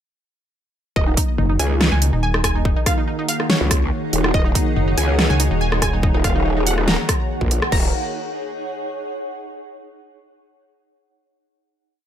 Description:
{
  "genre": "heavy wobble dubstep",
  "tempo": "142 BPM",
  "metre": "4/4",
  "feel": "swing 53% on 16ths, half-time",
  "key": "Eb minor",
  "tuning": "A4 = 440 Hz",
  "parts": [
    { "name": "wide unison pluck", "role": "melody", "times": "1.0-7.9 s", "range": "Eb4 to Bb5", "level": "-26 LUFS", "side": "right 2 dB", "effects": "ping-pong delay" },
    { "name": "lush unison pad", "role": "sustained chords", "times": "1.0-7.9 s", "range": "Eb3 to Gb4", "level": "-28 LUFS", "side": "equal", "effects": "chorus, phaser, sidechain pumping" },
    { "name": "growl bass", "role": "bass", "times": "1.0-7.9 s", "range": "Eb1 to Db2", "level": "-20 LUFS", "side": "equal", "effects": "chorus, overdrive" },
    { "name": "electronic kick drum", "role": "drums", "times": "1.0-7.8 s", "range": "none", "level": "-20 LUFS", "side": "equal", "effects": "overdrive" },
    { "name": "granular cloud pad", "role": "texture", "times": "2.2-9.4 s", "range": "Eb4 to Gb5", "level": "-28 LUFS", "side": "equal", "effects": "built-in reverb, sidechain pumping" },
    { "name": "dubstep drum kit", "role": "drums", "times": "1.2-7.8 s", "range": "crash cymbal, hi-hat, rim click, snare drum", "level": "-21 LUFS", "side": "equal", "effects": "overdrive" },
    { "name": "pulsing pluck wobble bass", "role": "bass", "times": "1.4-6.1 s", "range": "Eb1 to Db2", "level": "-19 LUFS", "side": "equal", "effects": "chorus, overdrive" }
  ],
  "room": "little or no reverb",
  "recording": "none",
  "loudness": "-17 LUFS",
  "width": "side -10 dB against mid",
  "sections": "1.0-7.7 drop; 7.7-9.4 final chord",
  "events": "drop 1.0-7.7; band accent 7.6",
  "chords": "1.0 Ebm"
}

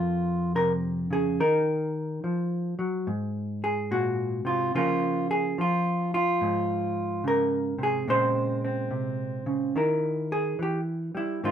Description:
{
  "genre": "solo jazz",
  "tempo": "72 BPM",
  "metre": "4/4",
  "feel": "swing 66% on 8ths, rubato",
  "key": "unclear",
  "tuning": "A4 = 440 Hz",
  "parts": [
    { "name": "hollow-body jazz guitar", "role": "solo", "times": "0.0-11.5 s", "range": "F2 to C5", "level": "-24 LUFS", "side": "equal", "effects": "none" }
  ],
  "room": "light reverb",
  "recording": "none",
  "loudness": "-24 LUFS",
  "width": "side -9 dB against mid",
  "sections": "0.0-11.5 A section",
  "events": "none",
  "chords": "0.0 Bbm9; 1.4 Ebmadd9; 3.1 Ab7; 4.7 Db6; 8.1 Bbm9; 9.7 Eb"
}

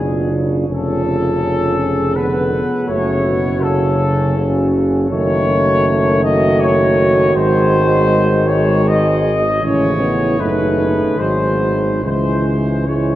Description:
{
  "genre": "classical, hymn-like piece for brass band",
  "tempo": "80 BPM",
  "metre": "3/4",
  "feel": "rubato",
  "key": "F# minor",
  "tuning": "A4 = 440 Hz",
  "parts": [
    { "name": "clear trumpet section", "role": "melody", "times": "0.0-13.2 s", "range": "G#4 to D#5", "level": "-18 LUFS", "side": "left 2 dB", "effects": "none" },
    { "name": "dark French horn section", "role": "second line", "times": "0.0-13.2 s", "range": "D#4 to G#4", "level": "-21 LUFS", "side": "right 3 dB", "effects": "none" },
    { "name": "clear euphonium", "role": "accompaniment", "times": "0.0-13.2 s", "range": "G#3 to D4", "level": "-21 LUFS", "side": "left 1 dB", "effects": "none" },
    { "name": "clear trombone", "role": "accompaniment", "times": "0.0-13.2 s", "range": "B2 to F#3", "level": "-21 LUFS", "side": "right 2 dB", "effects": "none" },
    { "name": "mellow tuba", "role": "bass", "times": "0.0-13.2 s", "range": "E#1 to C#2", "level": "-19 LUFS", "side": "equal", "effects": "none" }
  ],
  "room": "wet cathedral reverb, RT60 6.9 s",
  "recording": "worn, warbling old tape, cassette tape, warbly pitch drift",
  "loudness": "-13 LUFS",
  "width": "side -14 dB against mid",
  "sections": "0.0-13.2 A section",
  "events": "none",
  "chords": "0.0 C#/F#; 0.7 C#7/E#; 2.9 F#m; 5.1 D#m7b5/F#; 7.3 G#7; 9.6 A; 10.4 D#m7b5/F#; 11.2 G#7; 12.0 C#m"
}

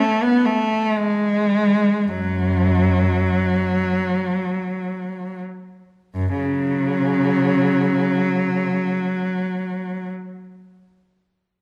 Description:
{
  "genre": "classical, free, expressive piece for unaccompanied cello",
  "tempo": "21-44 BPM (dotted quarters)",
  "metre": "6/8",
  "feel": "rubato",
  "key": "F# minor",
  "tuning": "A4 = 440 Hz",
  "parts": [
    { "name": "rich cello", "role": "solo", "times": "0.0-10.1 s", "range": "F#2 to B3", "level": "-20 LUFS", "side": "equal", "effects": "none" }
  ],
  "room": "wet recital hall reverb, RT60 1.5 s",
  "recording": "none",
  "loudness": "-20 LUFS",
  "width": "mono",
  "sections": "0.0-6.2 A section; 6.2-9.7 B section",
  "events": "slowing down 0.0-6.2",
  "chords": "none"
}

